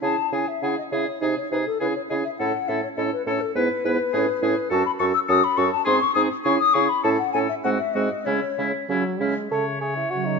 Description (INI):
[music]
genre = quick classical-period movement for wind quintet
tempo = 102 BPM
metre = 2/4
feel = rubato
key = C# minor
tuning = A4 = 442 Hz
[part]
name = mellow hollow silver concert flute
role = melody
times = 0.0-10.4 s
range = A4 to E6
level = -24 LUFS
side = left 8 dB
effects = none
[part]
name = clear oboe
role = second line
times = 0.0-10.4 s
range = E4 to C#5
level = -29 LUFS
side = left 2 dB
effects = none
[part]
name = warm French horn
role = accompaniment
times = 0.0-10.4 s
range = C#3 to D#4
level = -30 LUFS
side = left 1 dB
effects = none
[part]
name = warm clarinet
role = accompaniment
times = 0.0-10.4 s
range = F#3 to F#4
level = -28 LUFS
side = right 11 dB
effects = none
[part]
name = mellow bassoon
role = bass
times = 0.0-10.4 s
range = F#2 to A4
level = -27 LUFS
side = right 3 dB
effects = none
[sound]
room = moderate recital hall reverb, RT60 1.7 s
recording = nothing above 7.5 kHz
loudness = -20 LUFS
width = side -4 dB against mid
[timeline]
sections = 0.0-9.5 A section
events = none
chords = 0.0 C#m; 1.2 G#/B#; 1.8 C#m; 2.4 A; 3.6 E/G#; 4.1 Amaj7; 4.7 F#m; 5.9 G#; 6.5 C#m; 7.0 A; 7.6 G#7; 8.3 C#m